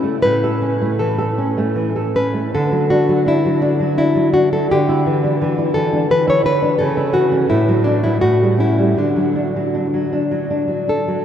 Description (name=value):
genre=romantic duo for nylon-string guitar and classical guitar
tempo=72-88 BPM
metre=3/4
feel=rubato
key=D major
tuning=A4 = 439 Hz
part: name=nylon-string guitar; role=melody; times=0.0-11.2 s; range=D4 to C#5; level=-18 LUFS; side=left 1 dB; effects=none
part: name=nylon-string guitar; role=accompaniment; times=0.0-11.2 s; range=A2 to A4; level=-17 LUFS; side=equal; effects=none
room=wet huge ambient reverb, RT60 8.2 s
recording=in a vast, echoing space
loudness=-14 LUFS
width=side -9 dB against mid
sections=0.0-11.2 A section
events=none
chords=0.2 A; 2.5 D; 4.7 Em7/D; 6.8 A/C#; 7.5 D/A; 8.2 A7; 9.0 D